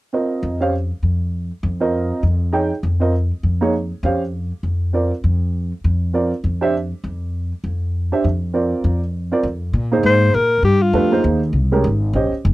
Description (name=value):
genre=modal jazz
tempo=200 BPM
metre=4/4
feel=swing 60% on 8ths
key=unclear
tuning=A4 = 440 Hz
part: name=warm upright piano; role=accompaniment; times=0.1-12.3 s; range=Ab3 to G5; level=-19 LUFS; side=right 2 dB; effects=none
part: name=upright bass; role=bass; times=0.4-12.5 s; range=F1 to Bb2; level=-19 LUFS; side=equal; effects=none
part: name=warm alto saxophone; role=melody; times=10.1-11.2 s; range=F4 to C5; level=-16 LUFS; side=left 3 dB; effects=none
room=little or no reverb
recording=dry, close 1970s-style studio recording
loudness=-17 LUFS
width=side -18 dB against mid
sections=0.1-9.7 A section; 9.7-12.5 B section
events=none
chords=0.1 Bbsus4; 4.9 C9sus4; 9.7 Bb9sus4